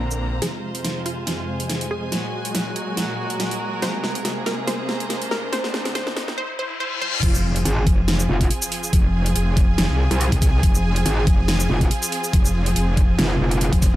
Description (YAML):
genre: heavy wobble dubstep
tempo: 141 BPM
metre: 4/4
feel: swing 54% on 16ths, half-time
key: F phrygian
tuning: A4 = 439 Hz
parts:
  - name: wide unison pluck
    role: melody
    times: 0.0-7.2 s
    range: F4 to C5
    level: -29 LUFS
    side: equal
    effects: tape echo
  - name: supersaw chords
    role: sustained chords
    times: 0.0-14.0 s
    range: F2 to Ab4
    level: -29 LUFS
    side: equal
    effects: sidechain pumping, low-pass filter
  - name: metallic wobble bass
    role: bass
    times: 0.0-0.4, 7.2-13.9 s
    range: F1 to C2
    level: -20 LUFS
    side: equal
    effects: chorus, overdrive
  - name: dark chamber string section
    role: texture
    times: 0.0-14.0 s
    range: D4 to Bb5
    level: -30 LUFS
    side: right 2 dB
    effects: sidechain pumping
  - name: dubstep drum kit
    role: drums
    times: 0.1-13.9 s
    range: crash cymbal, hi-hat, shaker, snare drum, toms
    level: -25 LUFS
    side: equal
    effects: overdrive
  - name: riser, reverse cymbal and impact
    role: sound effects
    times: 2.4-8.9 s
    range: none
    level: -31 LUFS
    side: left 2 dB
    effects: none
  - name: electronic kick drum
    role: drums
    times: 7.2-13.9 s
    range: none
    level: -18 LUFS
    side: equal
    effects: overdrive
  - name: metallic wobble bass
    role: bass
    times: 7.7-14.0 s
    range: F1 to C2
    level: -19 LUFS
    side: equal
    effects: distortion, chorus, overdrive
room: digital ambience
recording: high-pass filter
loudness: -19 LUFS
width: side -15 dB against mid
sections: 0.4-7.2 A section; 7.2-14.0 B section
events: build-up 0.4-7.2; drum fill 0.4-6.4, 7.0; filter sweep on supersaw synth 0.4-7.2; filter sweep on synth pluck 0.4-7.2; filter sweep 0.4-7.2; riser 2.4-7.2; reverse cymbal 6.4-7.2; drop 7.2-14.0; impact 7.2-8.9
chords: 0.4 Fm; 2.1 Gbadd9; 3.8 Abadd9; 5.5 Bbadd9; 7.2 Fm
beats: | 0.42 0.84 1.27 1.70 | 2.12 2.55 2.97 3.40 | 3.82 4.25 4.67 5.10 | 5.53 5.95 6.38 6.80 | 7.23 7.65 8.08 8.50 | 8.93 9.36 9.78 10.21 | 10.63 11.06 11.48 11.91 | 12.33 12.76 13.19 13.61